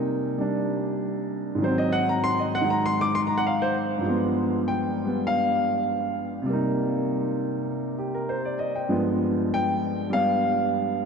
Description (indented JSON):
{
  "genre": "jazz",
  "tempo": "99 BPM",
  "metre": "4/4",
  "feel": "swing 67% on 8ths",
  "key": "C minor",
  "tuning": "A4 = 439 Hz",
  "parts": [
    { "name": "warm baby grand piano", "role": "solo", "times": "0.0-11.1 s", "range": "G2 to D6", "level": "-23 LUFS", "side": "equal", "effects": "none" }
  ],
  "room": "wet cathedral reverb, RT60 5.1 s",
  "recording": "in a vast, echoing space",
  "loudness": "-23 LUFS",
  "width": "side -6 dB against mid",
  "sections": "0.0-11.1 A section",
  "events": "grand piano solo 0.0-11.1",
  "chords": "0.0 Cm7; 1.6 Ab7; 4.0 G7b9; 6.5 Cm7; 8.9 G7b9"
}